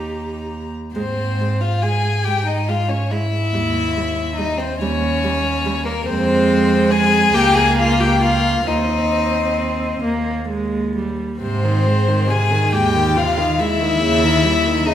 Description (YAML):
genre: classical, slow romantic movement for string quartet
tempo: 42-48 BPM (dotted quarters)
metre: 6/8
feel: rubato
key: Ab major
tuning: A4 = 440 Hz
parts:
  - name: rich violin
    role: melody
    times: 0.0-14.9 s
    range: Bb4 to Bb5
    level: -21 LUFS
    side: left 5 dB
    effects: none
  - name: warm violin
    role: second line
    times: 0.0-14.9 s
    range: Bb3 to Ab4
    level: -21 LUFS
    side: left 2 dB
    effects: none
  - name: warm viola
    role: accompaniment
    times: 0.0-14.9 s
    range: C3 to G4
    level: -22 LUFS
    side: right 2 dB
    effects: none
  - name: warm cello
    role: bass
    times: 0.0-14.9 s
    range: Db2 to Ab2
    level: -21 LUFS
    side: right 2 dB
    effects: none
room: wet recital hall reverb, RT60 1.4 s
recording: heard from further back in the room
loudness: -15 LUFS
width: side -10 dB against mid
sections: 1.0-14.9 A section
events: none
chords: 0.0 Eb; 1.0 Abaug; 3.5 Eb7b9; 6.1 Fm; 7.3 Bbm/Db; 8.7 Cm/Eb; 10.0 Eb; 11.4 Ab; 14.0 Eb7b9